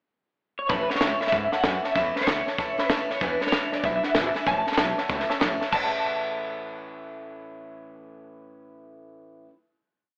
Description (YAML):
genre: rockabilly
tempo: 191 BPM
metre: 4/4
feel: swing 64% on 8ths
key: A major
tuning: A4 = 442 Hz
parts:
  - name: electric guitar through a small old amp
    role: melody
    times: 0.6-9.4 s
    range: B4 to A5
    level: -30 LUFS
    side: equal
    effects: tremolo, tape echo
  - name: clear upright piano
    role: accompaniment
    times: 0.7-9.5 s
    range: B4 to B5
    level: -36 LUFS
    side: equal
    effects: none
  - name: picked steel-string acoustic guitar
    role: accompaniment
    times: 0.7-9.5 s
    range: E2 to E4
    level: -34 LUFS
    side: equal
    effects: none
  - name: upright bass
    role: bass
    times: 0.7-9.4 s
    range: G#1 to G#2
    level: -37 LUFS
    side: equal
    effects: none
  - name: compact cocktail drum kit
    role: drums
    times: 0.7-5.8 s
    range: crash cymbal, hi-hat, kick drum, snare drum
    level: -29 LUFS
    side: equal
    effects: none
room: moderate studio reverb, RT60 0.8 s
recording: AM radio sound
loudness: -25 LUFS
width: mono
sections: 0.0-0.7 pickup bar; 0.7-5.7 A section; 5.7-8.2 final chord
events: upright piano fill 4.8-5.7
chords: 0.0 N.C.; 0.7 A; 3.2 E7; 4.5 A